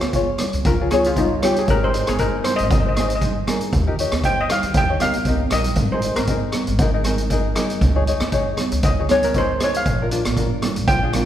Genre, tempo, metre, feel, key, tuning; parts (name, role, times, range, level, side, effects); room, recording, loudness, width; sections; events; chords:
calypso; 117 BPM; 4/4; swing 54% on 16ths; Ab major; A4 = 440 Hz
tenor ukulele; accompaniment; 0.0-11.3 s; D4 to Eb5; -24 LUFS; left 3 dB
upright bass; bass; 0.0-11.3 s; Ab1 to Eb2; -24 LUFS; equal
street-band drum kit; drums; 0.0-11.3 s; hi-hat, kick drum, rim click; -22 LUFS; equal
congas; percussion; 0.0-11.3 s; -27 LUFS; right 3 dB
steel pan; melody; 0.7-11.3 s; Eb4 to G5; -23 LUFS; equal
wet concert hall reverb, RT60 2.0 s; recorded in a church or concert hall; -17 LUFS; side -11 dB against mid
0.0-11.3 A section
steel pan solo 0.0-11.3; drum fill 5.1-5.8
0.0 Db; 1.7 Ab; 3.7 Eb; 5.8 Absus2; 7.8 Dbsus2; 9.9 Bb